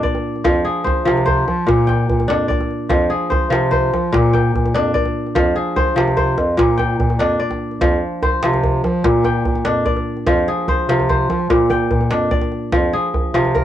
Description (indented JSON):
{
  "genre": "west african traditional, West African string and xylophone music",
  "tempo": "98 BPM (dotted quarters)",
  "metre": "12/8",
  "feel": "straight",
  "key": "F dorian",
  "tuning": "A4 = 440 Hz",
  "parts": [
    { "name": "kora", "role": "arpeggios", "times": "0.0-13.6 s", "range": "Bb2 to G5", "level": "-17 LUFS", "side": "left 1 dB", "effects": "none" },
    { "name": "djembe", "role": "percussion", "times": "0.0-13.6 s", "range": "none", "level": "-21 LUFS", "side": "right 1 dB", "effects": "none" },
    { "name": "warm bass clarinet", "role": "bass", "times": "0.4-13.6 s", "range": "F2 to F3", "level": "-19 LUFS", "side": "right 1 dB", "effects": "none" }
  ],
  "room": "light reverb",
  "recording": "worn, warbling old tape, cassette tape, warbly pitch drift",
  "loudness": "-15 LUFS",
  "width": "side -11 dB against mid",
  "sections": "0.0-12.7 A section",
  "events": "none",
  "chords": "0.4 Fm; 1.7 Bb; 2.9 Fm; 4.1 Bb; 5.4 Fm; 6.6 Bb; 7.8 F5; 9.0 Bb; 10.3 Fm; 11.5 Bb; 12.7 Fm"
}